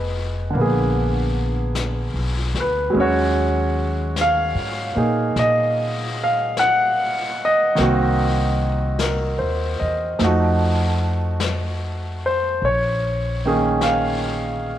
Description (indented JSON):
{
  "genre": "jazz ballad",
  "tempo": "50 BPM",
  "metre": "4/4",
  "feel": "swing 69% on 8ths",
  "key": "Bb minor",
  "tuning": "A4 = 440 Hz",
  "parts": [
    { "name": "clear grand piano", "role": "accompaniment", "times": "0.0-14.8 s", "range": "D3 to Gb5", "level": "-20 LUFS", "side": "right 1 dB", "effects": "none" },
    { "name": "upright bass", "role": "bass", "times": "0.0-14.8 s", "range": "F1 to Bb2", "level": "-23 LUFS", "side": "left 1 dB", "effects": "none" },
    { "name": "jazz brush drum kit", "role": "drums", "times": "0.5-14.8 s", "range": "brushed snare drum, hi-hat, snare drum", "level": "-31 LUFS", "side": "left 6 dB", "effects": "none" }
  ],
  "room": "light reverb, small room ambience",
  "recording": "1960s-style stereo",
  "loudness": "-18 LUFS",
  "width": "side -12 dB against mid",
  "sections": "0.0-14.8 A section",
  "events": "none",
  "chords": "0.0 Fm7b5; 0.6 Bb7b9; 3.0 Ebm11; 7.8 Cm7b5; 10.2 F7b9; 12.6 Bbm7",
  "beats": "0.55 1.76 | 2.96 4.17 5.37 6.57 | 7.78 8.98 10.19 11.40 | 12.61 13.81"
}